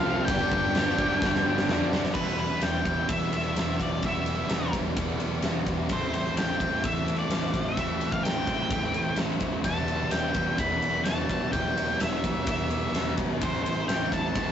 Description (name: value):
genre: rock, shoegaze and dream pop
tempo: 128 BPM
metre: 4/4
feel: straight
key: unclear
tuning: A4 = 440 Hz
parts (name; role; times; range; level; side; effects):
- octave-fuzz lead guitar; melody; 0.0-14.5 s; B4 to B5; -30 LUFS; left 1 dB; distortion
- biting overdriven guitar; riff; 0.0-14.5 s; E2 to A4; -34 LUFS; left 6 dB; none
- biting overdriven guitar; riff; 0.0-14.5 s; G2 to F4; -31 LUFS; right 3 dB; none
- biting overdriven guitar; riff; 0.0-2.2 s; G2 to F4; -31 LUFS; left 1 dB; none
- overdriven picked electric bass; bass; 0.1-14.5 s; E1 to F2; -36 LUFS; equal; none
- huge arena drum kit; drums; 0.3-14.5 s; crash cymbal, kick drum, ride cymbal, snare drum; -29 LUFS; equal; none
room: moderate studio reverb, RT60 0.6 s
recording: rough rehearsal-room recording, warm saturation, nothing above 7.9 kHz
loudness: -24 LUFS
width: side -9 dB against mid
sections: 0.0-2.2 A section; 2.2-14.5 B section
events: drum fill 1.2-2.2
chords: 0.3 G; 2.2 Em; 5.9 Am7; 9.7 Em; 13.4 Am